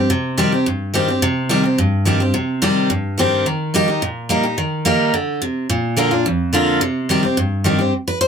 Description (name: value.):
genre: bluegrass.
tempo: 215 BPM.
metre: 4/4.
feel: straight.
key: C minor.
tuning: A4 = 438 Hz.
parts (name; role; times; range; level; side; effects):
picked steel-string acoustic guitar; solo; 0.0-8.3 s; F2 to C5; -15 LUFS; equal; none.
room: moderate booth ambience, RT60 0.2 s.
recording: none.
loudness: -15 LUFS.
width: side -7 dB against mid.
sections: 0.0-7.9 A section.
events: none.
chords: 0.0 Cm; 3.5 Eb; 5.7 Bb; 6.8 Cm.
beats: | 0.10 0.38 0.66 0.94 | 1.23 1.50 1.78 2.06 | 2.35 2.62 2.90 3.18 | 3.46 3.74 4.02 4.30 | 4.58 4.86 5.14 5.42 | 5.70 5.98 6.26 6.54 | 6.82 7.09 7.38 7.65 | 7.93 8.21.